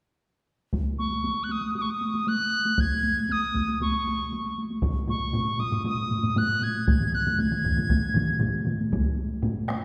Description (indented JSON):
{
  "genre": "japanese traditional, taiko drum ensemble",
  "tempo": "117 BPM",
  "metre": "4/4",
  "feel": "straight",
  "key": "unclear",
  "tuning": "A4 = 440 Hz",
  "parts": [
    { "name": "taiko ensemble", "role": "percussion", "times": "0.7-9.8 s", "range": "none", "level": "-32 LUFS", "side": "equal", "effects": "none" },
    { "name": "taiko ensemble", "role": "percussion", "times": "0.7-9.0 s", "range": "none", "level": "-31 LUFS", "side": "equal", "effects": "none" },
    { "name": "bright reedy piccolo", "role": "melody", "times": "1.0-8.4 s", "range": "Db6 to Ab6", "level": "-30 LUFS", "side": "equal", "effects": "none" },
    { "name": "taiko ensemble", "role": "percussion", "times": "4.8-9.8 s", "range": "none", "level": "-32 LUFS", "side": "equal", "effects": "none" },
    { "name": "taiko ensemble", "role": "percussion", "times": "6.9-8.8 s", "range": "none", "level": "-33 LUFS", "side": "equal", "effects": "none" }
  ],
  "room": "wet concert hall reverb, RT60 2.0 s",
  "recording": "heard from further back in the room",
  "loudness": "-26 LUFS",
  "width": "mono",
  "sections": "0.7-8.9 A section",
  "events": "none",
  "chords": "none"
}